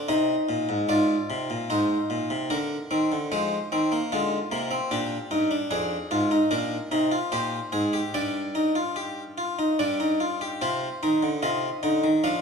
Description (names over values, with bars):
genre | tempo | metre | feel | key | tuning
classical, baroque-style 3-part fugue for harpsichord | 74 BPM | 3/4 | straight | C minor from 5.7 s | A4 = 440 Hz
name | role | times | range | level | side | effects
harpsichord | solo | 0.0-12.4 s | F2 to F5 | -23 LUFS | equal | none
room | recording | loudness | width
wet recital hall reverb, RT60 1.6 s | minimal, uncompressed stereo recording | -23 LUFS | side -5 dB against mid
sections
0.9-10.6 A section; 10.6-12.4 B section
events
none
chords
0.1 Cm; 0.9 Ab; 2.5 Cm9/D; 3.3 Fm; 4.9 Eb/Bb; 5.7 Ddim/F; 8.1 G5; 10.6 Cm